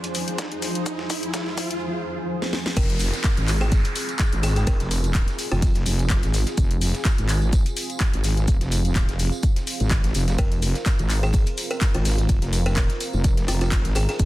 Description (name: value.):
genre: bass house.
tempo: 126 BPM.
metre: 4/4.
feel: swing 55% on 16ths.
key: F minor.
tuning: A4 = 440 Hz.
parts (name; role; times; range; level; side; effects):
dark analog pad; sustained chords; 0.0-14.3 s; F3 to C5; -33 LUFS; right 1 dB; chorus, sidechain pumping.
dusty soul sampler-style drum kit; drums; 0.0-14.3 s; hi-hat, shaker, snare drum; -37 LUFS; equal; none.
house drum kit; drums; 0.0-14.3 s; crash cymbal, handclaps, hi-hat, snare drum; -29 LUFS; left 2 dB; none.
riser and downlifter; sound effects; 0.0-6.6 s; none; -32 LUFS; right 1 dB; none.
granular cloud pad; texture; 0.0-1.8 s; F3 to C5; -34 LUFS; equal; built-in reverb, sidechain pumping.
electronic kick drum; drums; 0.4-14.3 s; none; -21 LUFS; equal; high-pass filter on kick, high-pass filter on room.
buzzing kalimba; melody; 2.8-5.9, 10.4-14.2 s; F4 to Bb4; -32 LUFS; equal; digital delay.
wobble bass; bass; 2.8-14.3 s; F1 to Ab1; -22 LUFS; equal; chorus, overdrive, sidechain pumping.
tambourine; percussion; 2.8-14.3 s; none; -36 LUFS; right 3 dB; none.
room: little or no reverb.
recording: dense, heavily limited modern master.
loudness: -20 LUFS.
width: side -16 dB against mid.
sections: 0.0-2.8 A section; 2.8-14.3 B section.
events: build-up 0.0-2.8; drum fill 0.0-1.8, 2.4-2.8; riser 0.0-1.8; drop 2.8-14.3.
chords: 0.0 Fm.